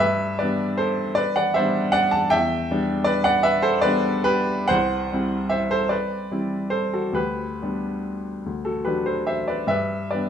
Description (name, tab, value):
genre	classical, romantic nocturne for solo piano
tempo	44-54 BPM (dotted quarters)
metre	6/8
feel	rubato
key	G major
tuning	A4 = 442 Hz
part	clear upright piano	solo	0.0-10.3 s	C2 to A5	-20 LUFS	equal	none
room	moderate recital hall reverb, RT60 1.3 s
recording	close, detailed microphones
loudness	-20 LUFS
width	side -8 dB against mid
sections	0.0-10.3 A section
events	none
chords	0.0 G; 2.3 Em7; 4.7 C; 7.2 G/D; 8.5 D; 9.7 G